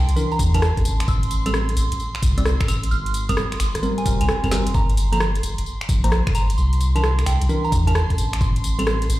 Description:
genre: UK garage, two-step garage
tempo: 131 BPM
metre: 4/4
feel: swing 66% on 16ths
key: unclear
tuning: A4 = 436 Hz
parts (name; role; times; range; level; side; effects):
- soft synth bell; melody; 0.0-8.9 s; G5 to F6; -29 LUFS; right 2 dB; chorus, phaser, dub echo
- airy breathy pad; sustained chords; 0.0-9.2 s; C6; -34 LUFS; right 6 dB; chorus, phaser, sidechain pumping
- soft dub sub bass; bass; 0.0-9.2 s; Eb1 to E2; -20 LUFS; equal; none
- garage drum kit; drums; 0.1-9.2 s; claves, finger snaps, hi-hat, rim click, snare drum, tambourine; -27 LUFS; equal; none
- bell-like tine electric piano; stabs; 0.2-8.8 s; E3 to D5; -27 LUFS; equal; dub echo
- electronic kick drum; drums; 0.4-8.5 s; none; -22 LUFS; equal; none
room: digital ambience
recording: played on a big sound system in a bare room, large studio reverb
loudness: -18 LUFS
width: side -16 dB against mid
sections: 0.0-9.2 A section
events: drum fill 4.5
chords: 0.0 C9; 0.9 Am; 2.9 Abmaj9; 4.7 Gm; 6.6 C9; 8.2 Am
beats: 0.17 0.62 | 1.08 1.54 2.00 2.46 | 2.91 3.37 3.83 4.29 | 4.75 5.20 5.66 6.12 | 6.58 7.04 7.49 7.95 | 8.41 8.87

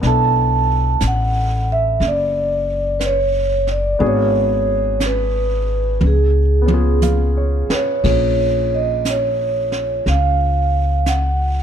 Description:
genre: jazz ballad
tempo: 60 BPM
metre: 4/4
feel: swing 66% on 8ths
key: Bb minor from 8.0 s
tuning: A4 = 440 Hz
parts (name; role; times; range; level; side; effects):
- warm concert grand piano; accompaniment; 0.0-11.6 s; F3 to E#5; -25 LUFS; left 4 dB; none
- upright bass; bass; 0.0-11.6 s; F#1 to C#2; -18 LUFS; left 1 dB; none
- jazz brush drum kit; drums; 0.0-11.6 s; brushed snare drum, hi-hat, kick drum, ride cymbal, snare drum, toms; -26 LUFS; right 2 dB; none
- vibraphone with soft mallets; melody; 0.1-11.6 s; G#4 to A5; -19 LUFS; right 3 dB; none
room: little or no reverb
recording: dark, warm production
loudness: -15 LUFS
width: side -8 dB against mid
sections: 0.0-8.0 A section; 8.0-11.6 B section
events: drum fill 6.0-8.0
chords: 0.0 Bm7; 4.0 G#m7b5; 6.0 C#7; 8.0 Bbm7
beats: | 0.02 1.01 2.00 3.00 | 4.00 5.01 6.01 7.03 | 8.04 9.05 10.06 11.06

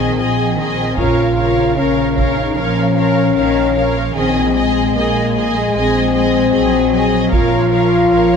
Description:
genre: cinematic, epic orchestral film score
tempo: 76 BPM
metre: 4/4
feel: straight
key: Bb minor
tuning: A4 = 439 Hz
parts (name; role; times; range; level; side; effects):
- warm symphonic violin section; melody; 0.0-8.4 s; F5 to Ab5; -24 LUFS; left 2 dB; none
- rich symphonic violin section; second line; 0.0-8.4 s; Db5 to Eb5; -23 LUFS; left 2 dB; none
- rich symphonic viola section; accompaniment; 0.0-8.4 s; Ab4 to Bb4; -23 LUFS; right 1 dB; none
- mellow French horn section; sustained chords; 0.0-8.4 s; Ab3 to F4; -16 LUFS; left 5 dB; none
- rich symphonic cello section; bass; 0.0-8.4 s; Db3 to Ab3; -22 LUFS; right 5 dB; none
- rich symphonic double bass section; bass; 0.0-8.4 s; Bb1; -20 LUFS; right 5 dB; none
- taiko ensemble; drums; 1.0-2.5, 7.3-8.4 s; none; -20 LUFS; right 2 dB; none
room: moderate scoring stage reverb, RT60 1.8 s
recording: none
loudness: -12 LUFS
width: side -6 dB against mid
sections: 0.0-8.4 A section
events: none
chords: 0.0 Ab/Bb; 1.0 Bbm; 4.1 Ab/Bb; 7.3 Bbm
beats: 0.18 | 0.97 1.76 2.56 3.35 | 4.14 4.93 5.73 6.52 | 7.31 8.11

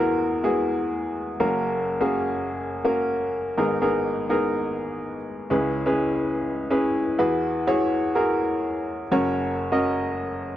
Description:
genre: pop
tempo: 124 BPM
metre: 4/4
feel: straight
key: unclear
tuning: A4 = 436 Hz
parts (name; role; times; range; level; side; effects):
- clear upright piano; solo; 0.0-10.6 s; F#1 to D#5; -22 LUFS; equal; none
room: moderate booth ambience, RT60 0.2 s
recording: dry, close 1970s-style studio recording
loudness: -22 LUFS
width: side -12 dB against mid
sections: 0.0-10.6 A section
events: upright piano fill 10.3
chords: 0.0 Eadd9; 1.4 F#; 3.6 G#madd9; 5.5 C#m7; 7.2 Eadd9; 9.1 F#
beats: 0.20 0.68 1.17 | 1.65 2.13 2.61 3.09 | 3.58 4.06 4.54 5.02 | 5.50 5.99 6.47 6.95 | 7.43 7.91 8.39 8.88 | 9.36 9.84 10.32

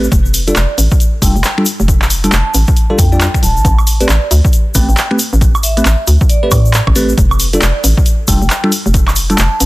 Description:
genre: UK garage, two-step garage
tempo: 136 BPM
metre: 4/4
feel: swing 62% on 16ths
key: unclear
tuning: A4 = 440 Hz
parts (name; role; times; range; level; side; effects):
- bell-like tine electric piano; stabs; 0.0-9.4 s; G3 to D5; -18 LUFS; equal; phaser, digital delay
- hollow knocking FM bass; bass; 0.0-9.7 s; D1 to A2; -12 LUFS; equal; none
- tube shaker; percussion; 0.0-9.7 s; none; -21 LUFS; left 3 dB; none
- electronic kick drum; drums; 0.1-9.1 s; none; -12 LUFS; equal; none
- punchy analog drum machine; drums; 0.1-9.7 s; finger snaps, handclaps, hi-hat, woodblock; -17 LUFS; right 1 dB; none
- vibraphone with medium mallets; melody; 0.5-9.5 s; D5 to A5; -22 LUFS; right 2 dB; digital delay
room: digital ambience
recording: dense, heavily limited modern master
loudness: -9 LUFS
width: side -20 dB against mid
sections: 0.0-9.7 A section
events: none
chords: 0.1 F69; 3.6 Am9; 7.2 F69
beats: | 0.12 0.56 1.00 1.44 | 1.88 2.32 2.77 3.21 | 3.65 4.09 4.53 4.97 | 5.41 5.85 6.29 6.74 | 7.18 7.62 8.06 8.50 | 8.94 9.38

